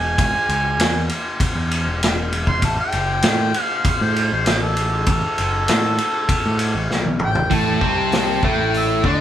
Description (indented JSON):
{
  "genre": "blues rock power trio and southern rock",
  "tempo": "98 BPM",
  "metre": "4/4",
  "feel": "straight",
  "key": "unclear",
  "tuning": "A4 = 439 Hz",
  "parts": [
    { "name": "mellow harmonica", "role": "melody", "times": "0.0-9.2 s", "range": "A4 to C6", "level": "-22 LUFS", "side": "equal", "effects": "overdrive" },
    { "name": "growling picked electric bass", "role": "bass", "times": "0.0-9.2 s", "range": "E1 to A2", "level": "-23 LUFS", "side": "equal", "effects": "overdrive" },
    { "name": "vintage drum kit", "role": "drums", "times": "0.2-9.2 s", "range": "hi-hat, kick drum, ride cymbal, snare drum, toms", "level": "-20 LUFS", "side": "equal", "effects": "none" },
    { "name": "distorted electric guitar", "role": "riff", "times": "7.5-9.2 s", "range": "A2 to D4", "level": "-18 LUFS", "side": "equal", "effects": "overdrive" }
  ],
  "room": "light reverb",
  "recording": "band playing live in one room",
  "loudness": "-16 LUFS",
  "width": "side -11 dB against mid",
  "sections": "0.0-7.5 A section; 7.5-9.2 B section",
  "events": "harmonica solo 0.0-7.5; drum fill 6.9-7.5",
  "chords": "0.0 E; 2.6 N.C.",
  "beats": "| 0.19 0.80 1.41 2.02 | 2.63 3.24 3.85 4.46 | 5.07 5.68 6.29 6.90 | 7.51 8.13 8.74"
}